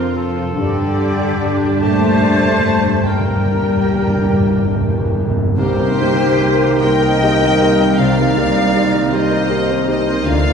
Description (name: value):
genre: cinematic, emotional film score for orchestra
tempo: 47-54 BPM (dotted quarters)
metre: 6/8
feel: rubato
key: C dorian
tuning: A4 = 440 Hz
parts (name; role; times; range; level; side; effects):
- rich studio violin section; melody; 0.0-10.5 s; D4 to G5; -23 LUFS; left 3 dB; none
- warm cor anglais; second line; 0.0-10.5 s; G4 to D5; -25 LUFS; left 1 dB; none
- dark concert grand piano; accompaniment; 0.0-10.5 s; C2 to G4; -21 LUFS; left 1 dB; none
- dark studio viola section; accompaniment; 0.0-10.5 s; D3 to D4; -24 LUFS; right 2 dB; none
- concert harp; arpeggios; 0.0-10.5 s; F2 to D6; -24 LUFS; left 2 dB; none
- dark studio double bass section; bass; 0.0-10.5 s; C2 to G2; -22 LUFS; right 1 dB; none
- mellow French horn section; sustained chords; 0.5-10.5 s; D3 to Bb3; -23 LUFS; left 3 dB; none
- dark studio violin section; second line; 0.6-10.5 s; D4 to A5; -26 LUFS; left 1 dB; none
- large flute ensemble; second line; 0.6-10.5 s; G4 to Eb5; -22 LUFS; left 2 dB; none
- warm studio cello section; bass; 0.6-10.5 s; C2 to A3; -23 LUFS; right 2 dB; none
- timpani; percussion; 0.6-5.5 s; G2; -21 LUFS; right 1 dB; none
- mellow clarinet; second line; 5.6-10.5 s; Eb4 to F4; -23 LUFS; right 6 dB; none
room: wet scoring stage reverb, RT60 2.0 s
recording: heard from further back in the room, nothing above 10.6 kHz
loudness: -13 LUFS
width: side -6 dB against mid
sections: 0.0-5.6 A section; 5.6-10.5 B section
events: timpani fill 0.6-5.6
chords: 0.0 F; 0.6 Gm; 5.6 Cm7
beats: | 0.57 1.82 | 3.08 4.34 | 5.58 6.83 | 7.99 9.12 | 10.25